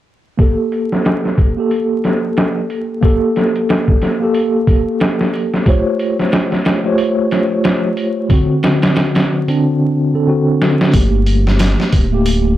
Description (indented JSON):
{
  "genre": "trip hop",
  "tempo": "91 BPM",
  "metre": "4/4",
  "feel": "swing 59% on 16ths",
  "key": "G harmonic minor",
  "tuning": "A4 = 440 Hz",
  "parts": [
    { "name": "mellow tine electric piano", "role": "accompaniment", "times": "0.4-12.6 s", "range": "D3 to C#5", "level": "-15 LUFS", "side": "equal", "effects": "medium stereo tremolo, low-pass filter, tape echo" },
    { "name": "trip hop sampler-style drum kit", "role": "drums", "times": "0.4-12.4 s", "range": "hi-hat, kick drum, snare drum", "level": "-15 LUFS", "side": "equal", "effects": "overdrive, low-pass filter on kick, low-pass filter on hats, low-pass filter on snare, low-pass filter on room" },
    { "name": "dark detuned saw bass", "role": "bass", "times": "10.9-12.6 s", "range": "D1 to G1", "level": "-14 LUFS", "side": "equal", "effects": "none" }
  ],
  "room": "little or no reverb",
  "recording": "dry, gritty hardware recording, transformer saturation, vinyl crackle",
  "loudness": "-12 LUFS",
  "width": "side -13 dB against mid",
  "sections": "0.4-10.9 A section; 10.9-12.6 B section",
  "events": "filter sweep on tine electric piano 0.4-10.9; drum fill 10.6-10.9",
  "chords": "0.4 Gmadd9; 5.7 A7alt; 8.3 D7; 10.9 Gmadd9"
}